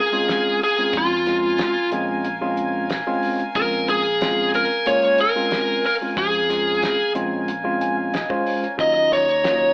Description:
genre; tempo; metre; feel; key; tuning
straight-eighth soul blues; 92 BPM; 4/4; straight; Bb minor; A4 = 440 Hz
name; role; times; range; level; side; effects
biting lead guitar; melody; 0.0-9.7 s; F4 to Eb5; -21 LUFS; equal; overdrive
brilliant horn section; sustained chords; 0.0-9.7 s; Bb4 to Bb5; -30 LUFS; equal; none
tine electric piano; accompaniment; 0.1-9.7 s; Gb3 to Ab5; -28 LUFS; equal; none
damped 70s drum kit; drums; 0.3-9.6 s; hi-hat, kick drum, snare drum; -33 LUFS; equal; none
fingered electric bass; bass; 0.9-9.7 s; Bb1 to F2; -37 LUFS; equal; none
room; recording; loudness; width
moderate large studio reverb, RT60 1.3 s; band playing live in one room, AM radio sound; -21 LUFS; mono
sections
0.0-9.7 A section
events
tine electric piano fill 7.5-8.8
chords
0.0 Bbm7; 8.8 Ebm7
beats
0.29 | 0.94 1.60 2.25 2.90 | 3.56 4.21 4.87 5.52 | 6.17 6.83 7.48 8.13 | 8.79 9.44

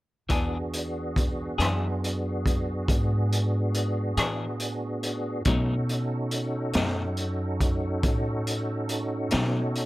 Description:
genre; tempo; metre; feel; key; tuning
slow blues; 46 BPM (dotted quarters); 12/8; straight; E mixolydian; A4 = 440 Hz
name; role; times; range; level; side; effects
electric guitar at the edge of break-up; accompaniment; 0.3-9.6 s; B2 to G#4; -28 LUFS; left 3 dB; tremolo
tonewheel organ; sustained chords; 0.3-9.9 s; B3 to A4; -31 LUFS; right 1 dB; slow rotary speaker, chorus vibrato
upright bass; bass; 0.3-9.9 s; E2 to B2; -29 LUFS; equal; none
raw garage drum kit; drums; 0.3-9.9 s; hi-hat, kick drum, rim click, snare drum; -28 LUFS; equal; none
room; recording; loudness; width
little or no reverb; none; -25 LUFS; side -18 dB against mid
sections
0.3-9.9 A section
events
none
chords
0.3 E7; 5.5 B7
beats
| 0.31 1.60 2.89 4.18 | 5.47 6.76 8.05 9.34

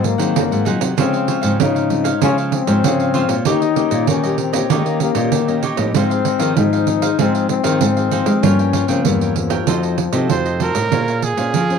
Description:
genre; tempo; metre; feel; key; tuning
samba and choro; 97 BPM; 4/4; straight; unclear; A4 = 440 Hz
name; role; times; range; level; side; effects
breathy trombone; second line; 0.0-10.6 s; F3 to Eb4; -20 LUFS; left 12 dB; none
cavaquinho; accompaniment; 0.0-11.8 s; Eb4 to Ab5; -26 LUFS; right 6 dB; none
nylon-string guitar; accompaniment; 0.0-11.8 s; G2 to C5; -23 LUFS; left 3 dB; none
nylon-string guitar; bass; 0.0-11.8 s; E2 to Ab3; -20 LUFS; right 1 dB; none
pandeiro; percussion; 0.0-11.8 s; none; -21 LUFS; right 14 dB; none
clear trumpet; melody; 10.3-11.8 s; Ab4 to C5; -20 LUFS; right 4 dB; none
room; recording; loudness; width
small room ambience; dry, close 1970s-style studio recording; -14 LUFS; side -6 dB against mid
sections
0.0-10.9 A section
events
trombone solo 0.0-10.9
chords
0.0 Ab7; 1.0 Dbmaj7; 3.5 Eb7; 5.9 Ab6; 8.4 Gm7b5; 9.7 F7b9; 10.9 Bbm9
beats
0.36 | 0.98 1.60 2.22 2.84 | 3.46 4.08 4.70 5.33 | 5.95 6.57 7.19 7.81 | 8.43 9.05 9.68 10.30 | 10.92 11.54

